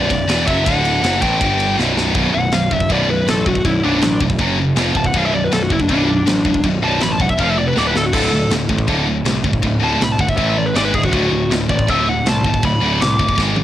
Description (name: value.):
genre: heavy metal.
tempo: 160 BPM.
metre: 4/4.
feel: straight.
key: B phrygian.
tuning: A4 = 436 Hz.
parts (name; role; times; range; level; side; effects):
high-gain lead guitar; melody; 0.0-13.4 s; D4 to D6; -19 LUFS; left 1 dB; distortion.
heavy high-gain guitar; riff; 0.0-13.6 s; B1 to A3; -21 LUFS; left 7 dB; distortion, cassette tape.
high-gain distorted guitar; riff; 0.0-13.6 s; B1 to A3; -21 LUFS; right 7 dB; distortion, cassette tape.
fuzz picked electric bass; bass; 0.0-13.6 s; B0 to C2; -21 LUFS; equal; overdrive.
tight metal drum kit; drums; 0.1-13.6 s; china cymbal, crash cymbal, kick drum, ride cymbal, snare drum, toms; -22 LUFS; equal; cassette tape.
room: little or no reverb.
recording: home recording on cassette.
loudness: -14 LUFS.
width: side -12 dB against mid.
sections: 0.0-2.2 A section; 2.2-13.6 B section.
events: drum fill 1.8-2.2, 7.8-8.1, 13.4; lead electric guitar solo 2.2-13.6.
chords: 0.0 Bm; 0.7 D5; 1.0 F#m7; 1.4 G5; 1.8 B5; 2.2 Bm; 4.4 F#5; 4.8 F5; 5.1 Bm; 7.4 F5; 7.8 D5; 10.4 A5; 10.8 G#5; 11.1 D.